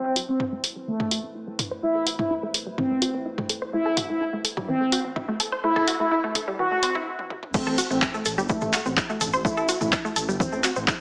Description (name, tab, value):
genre	melodic techno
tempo	126 BPM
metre	4/4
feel	straight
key	A dorian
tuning	A4 = 438 Hz
part	expressive synth lead	melody	0.0-10.7 s	A3 to F#4	-25 LUFS	equal	wide subtle chorus, tape echo
part	dark analog pad	sustained chords	0.0-7.0 s	A3 to C5	-41 LUFS	equal	chorus, sidechain pumping
part	wide unison pluck	arpeggios	0.0-10.9 s	E3 to C6	-28 LUFS	equal	sidechain pumping, tape echo
part	punchy analog drum machine	drums	0.2-11.0 s	crash cymbal, handclaps, hi-hat, toms	-26 LUFS	equal	overdrive, sidechain pumping on toms, sidechain pumping on hats, sidechain pumping on cymbals
part	electronic kick drum	drums	7.5-11.0 s	none	-26 LUFS	equal	overdrive
part	tube shaker	percussion	7.5-11.0 s	none	-34 LUFS	equal	none
part	swelling detuned saw bass	bass	7.7-10.9 s	G1 to A1	-33 LUFS	equal	sidechain pumping
room	wet digital room reverb, RT60 1.1 s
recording	high-pass filter, small speaker sound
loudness	-22 LUFS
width	side -27 dB against mid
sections	0.0-7.5 A section; 7.5-11.0 B section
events	build-up 0.0-7.5; filter sweep on synth arpeggio sound 0.0-7.5; break 7.1-7.5; drum fill 7.2-7.5; drop 7.5-11.0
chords	0.0 Am